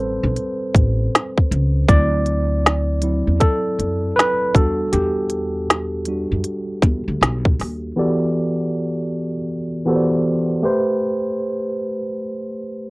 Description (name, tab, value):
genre	lo-fi hip hop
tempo	79 BPM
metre	4/4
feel	swing 64% on 16ths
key	E minor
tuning	A4 = 440 Hz
part	tine electric piano	accompaniment	0.0-12.9 s	E3 to D5	-20 LUFS	equal	medium stereo tremolo, cassette tape, low-pass filter
part	upright bass	bass	0.0-7.9 s	A1 to F#2	-21 LUFS	equal	none
part	organic electronic drum kit	drums	0.4-7.8 s	hi-hat, kick drum, snare drum	-15 LUFS	equal	overdrive
room	moderate booth ambience, RT60 0.2 s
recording	worn, warbling old tape, cassette tape, warbly pitch drift, low-pass filter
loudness	-17 LUFS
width	side -24 dB against mid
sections	0.0-8.0 A section; 8.0-12.9 B section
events	tine electric piano solo 0.0-8.0; filter sweep 8.0-12.9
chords	0.0 Am9; 1.9 D7; 4.5 Em9; 8.0 Em11; 10.6 Am9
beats	0.37 1.13 | 1.89 2.65 3.40 4.17 | 4.92 5.68 6.44 7.20 | 7.96 8.72 9.48 10.24 | 11.00 11.76 12.52